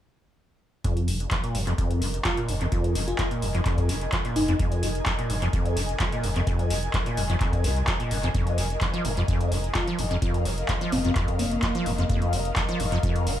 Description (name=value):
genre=acid house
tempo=128 BPM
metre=4/4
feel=straight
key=F minor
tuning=A4 = 440 Hz
part: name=liquid acid bass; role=riff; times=0.8-13.3 s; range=F2 to F3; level=-27 LUFS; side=equal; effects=analog chorus, dub echo
part: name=booming analog drum machine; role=drums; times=0.8-13.4 s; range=handclaps, hi-hat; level=-31 LUFS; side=equal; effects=dub echo
part: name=electronic kick drum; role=drums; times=0.8-13.1 s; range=none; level=-28 LUFS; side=equal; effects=none
part: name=ethereal airy pad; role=texture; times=1.4-13.4 s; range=Bb4 to Ab5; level=-34 LUFS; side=left 1 dB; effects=ensemble chorus, built-in reverb, sidechain pumping
part: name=saturated sub bass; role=bass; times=1.1-13.4 s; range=F1 to C2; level=-29 LUFS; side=equal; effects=sidechain pumping
part: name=bell-like FM electric piano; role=melody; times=2.2-4.6, 9.8-11.7 s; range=Bb3 to F4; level=-30 LUFS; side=left 1 dB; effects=chorus, cassette tape, analog delay
room=light reverb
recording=echo-heavy mix, small room ambience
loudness=-23 LUFS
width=side -11 dB against mid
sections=0.8-13.4 A section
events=none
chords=0.8 Fm7